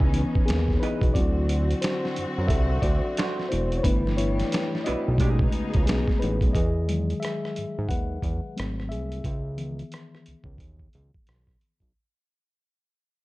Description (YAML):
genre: R&B, neo-soul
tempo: 89 BPM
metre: 4/4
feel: swing 61% on 16ths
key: E major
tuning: A4 = 440 Hz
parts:
  - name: vintage hollow-body jazz guitar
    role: second line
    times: 0.0-5.4 s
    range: A3 to D#5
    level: -33 LUFS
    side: right 4 dB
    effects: slapback echo
  - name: reed electric piano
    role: accompaniment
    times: 0.0-12.0 s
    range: D#3 to F#5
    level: -29 LUFS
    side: left 2 dB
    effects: none
  - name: warm studio string section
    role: sustained chords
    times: 0.0-6.5 s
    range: C#3 to G#4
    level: -34 LUFS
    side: equal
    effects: none
  - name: fat analog bass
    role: bass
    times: 0.0-11.9 s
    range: E1 to G#2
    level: -26 LUFS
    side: equal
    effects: none
  - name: boom bap sampler-style drum kit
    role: drums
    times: 0.0-11.9 s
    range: hi-hat, kick drum, rim click, snare drum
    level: -26 LUFS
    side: equal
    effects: none
room: little or no reverb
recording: dark, warm production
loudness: -23 LUFS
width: side -19 dB against mid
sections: 0.0-6.5 A section; 6.5-11.9 B section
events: reed electric piano solo 0.0-6.5, 6.5-11.9; fade-out 6.5-11.9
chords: 0.0 C#m9; 1.1 D7; 3.8 G6; 5.2 B13; 6.5 Emaj7; 8.6 G#7b9; 9.2 C#m9